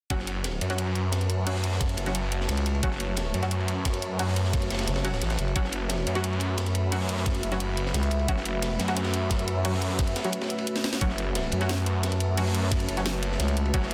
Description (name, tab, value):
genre	dark technical drum and bass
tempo	176 BPM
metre	4/4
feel	straight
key	F# minor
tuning	A4 = 440 Hz
part	deep dark ambient pad	sustained chords	1.3-13.9 s	A3 to E5	-38 LUFS	equal	chorus, built-in reverb, vintage 12-bit sampler grit, sidechain pumping
part	orchestra-hit-like synth stab	stabs	0.1-13.8 s	F#3 to F#4	-37 LUFS	equal	built-in reverb, tape echo
part	phased detuned saw bass	bass	0.1-13.9 s	F#1 to F#2	-30 LUFS	equal	phaser, tube saturation
part	crunchy breakbeat drum kit	drums	0.1-13.9 s	hi-hat, ride cymbal, snare drum	-38 LUFS	equal	high-pass filter on cymbals, high-pass filter on hats, high-pass filter on snare, high-pass filter on room
part	drum and bass drum kit	drums	0.1-13.9 s	hi-hat, snare drum	-34 LUFS	equal	none
part	electronic kick drum	drums	0.1-13.8 s	none	-30 LUFS	equal	none
part	airy breathy pad	texture	0.3-13.9 s	F#4 to B5	-38 LUFS	equal	chorus, sidechain pumping
part	growling FM bass	bass	2.5-2.8, 4.9-5.5, 7.9-8.3, 13.4-13.7 s	F#1 to C#2	-28 LUFS	equal	none
room	light reverb, small room ambience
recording	dense, heavily limited modern master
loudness	-27 LUFS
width	mono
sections	0.1-13.9 A section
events	drum fill 10.8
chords	0.1 F#m